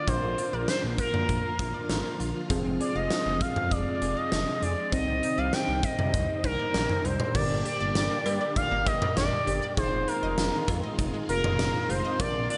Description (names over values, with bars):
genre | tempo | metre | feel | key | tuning
synth-pop | 99 BPM | 4/4 | straight | F dorian | A4 = 444 Hz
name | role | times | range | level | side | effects
expressive portamento lead | melody | 0.0-12.6 s | Bb4 to G5 | -32 LUFS | equal | chorus, tape echo, slapback echo
muted felt-like synth keys | accompaniment | 0.0-12.6 s | D3 to C5 | -38 LUFS | equal | chorus, slapback echo
string machine, violins | sustained chords | 0.0-12.6 s | C3 to G4 | -38 LUFS | equal | ensemble chorus
analog pluck | arpeggios | 0.1-12.6 s | C3 to F5 | -42 LUFS | equal | none
smooth synth bass | bass | 0.1-12.5 s | F1 to C3 | -35 LUFS | equal | none
huge arena drum kit | drums | 0.1-12.6 s | cowbell, crash cymbal, hi-hat, kick drum, snare drum, toms | -33 LUFS | equal | none
room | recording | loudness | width
moderate lush hall reverb, RT60 2.2 s | big arena sound, nothing above 10.8 kHz | -28 LUFS | mono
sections
0.0-7.3 A section; 7.3-12.6 B section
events
none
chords
0.0 Bb; 2.5 Fm; 4.9 Cmadd9; 7.3 Gm; 9.8 Fm7